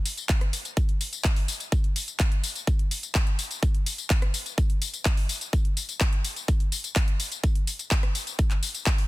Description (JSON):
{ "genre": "EDM", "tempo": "126 BPM", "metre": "4/4", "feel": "straight", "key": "none", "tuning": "none", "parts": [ { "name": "big-room dance drum kit", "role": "drums", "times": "0.1-9.1 s", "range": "handclaps, hi-hat, rim click, tambourine", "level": "-29 LUFS", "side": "left 2 dB", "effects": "overdrive" }, { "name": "electronic kick drum", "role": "drums", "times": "0.3-9.0 s", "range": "none", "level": "-23 LUFS", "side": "equal", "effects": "overdrive" } ], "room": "digital ambience", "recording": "dense, heavily limited modern master", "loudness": "-24 LUFS", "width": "side -18 dB against mid", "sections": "0.0-9.1 A section", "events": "none", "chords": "none" }